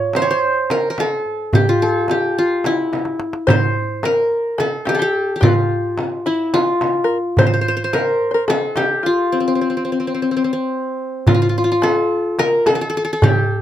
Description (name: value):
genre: Turkish makam ensemble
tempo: 215 BPM (eighths)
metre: 7/8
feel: straight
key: C makam hicaz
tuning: A4 = 440 Hz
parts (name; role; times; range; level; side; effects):
- qanun; melody; 0.0-13.6 s; C4 to Db5; -17 LUFS; left 1 dB; none
- darbuka; percussion; 0.1-13.4 s; none; -19 LUFS; right 2 dB; none
- frame drum; percussion; 0.1-13.4 s; none; -21 LUFS; equal; none
- open-back banjo; second line; 3.5-13.6 s; E4 to C5; -22 LUFS; left 2 dB; none
room: moderate booth ambience, RT60 0.2 s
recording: close, detailed microphones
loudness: -15 LUFS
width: side -11 dB against mid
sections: 0.0-11.3 A section; 11.3-13.6 B section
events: drum fill 2.9-3.5; stop 9.3-11.3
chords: none